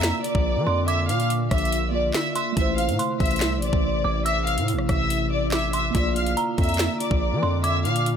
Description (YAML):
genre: hip hop, drill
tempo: 142 BPM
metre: 4/4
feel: half-time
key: unclear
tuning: A4 = 440 Hz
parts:
  - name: clear studio violin section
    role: melody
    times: 0.0-8.0 s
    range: D5 to F6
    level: -26 LUFS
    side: left 1 dB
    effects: low-pass filter
  - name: dark detuned synth bell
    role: second line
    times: 0.0-8.2 s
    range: Bb5 to E6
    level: -31 LUFS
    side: right 4 dB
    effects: chorus, ping-pong delay
  - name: mellow tine electric piano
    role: accompaniment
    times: 0.0-8.2 s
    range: A3 to D5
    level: -31 LUFS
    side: right 1 dB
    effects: medium stereo tremolo, low-pass filter
  - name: glassy FM pad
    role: sustained chords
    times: 0.0-8.2 s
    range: C3 to F4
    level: -30 LUFS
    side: equal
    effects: ensemble chorus, built-in reverb
  - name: distorted 808-style bass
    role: bass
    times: 0.0-8.2 s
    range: A1 to F3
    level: -25 LUFS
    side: equal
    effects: distortion
  - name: drill drum kit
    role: drums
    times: 0.0-8.2 s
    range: handclaps, hi-hat, kick drum, rim click, snare drum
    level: -26 LUFS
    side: equal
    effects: none
room: digital ambience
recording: none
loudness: -20 LUFS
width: side -8 dB against mid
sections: 0.0-8.2 A section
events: none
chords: 0.0 Bb; 2.6 Am; 5.9 Bb